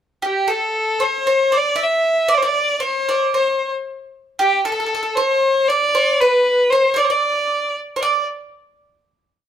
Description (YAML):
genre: Arabic maqam ensemble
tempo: 116 BPM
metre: 4/4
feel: straight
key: D maqam rast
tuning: A4 = 439 Hz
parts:
  - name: rich violin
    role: melody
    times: 0.2-8.2 s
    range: G4 to E5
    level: -17 LUFS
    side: left 2 dB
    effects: none
  - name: bowl-back mandolin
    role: second line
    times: 0.2-8.3 s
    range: G4 to E5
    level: -20 LUFS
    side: right 3 dB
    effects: none
room: moderate large studio reverb, RT60 0.9 s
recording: band playing live in one room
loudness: -15 LUFS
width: side -9 dB against mid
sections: 0.0-8.0 A section; 8.0-9.5 final chord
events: none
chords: none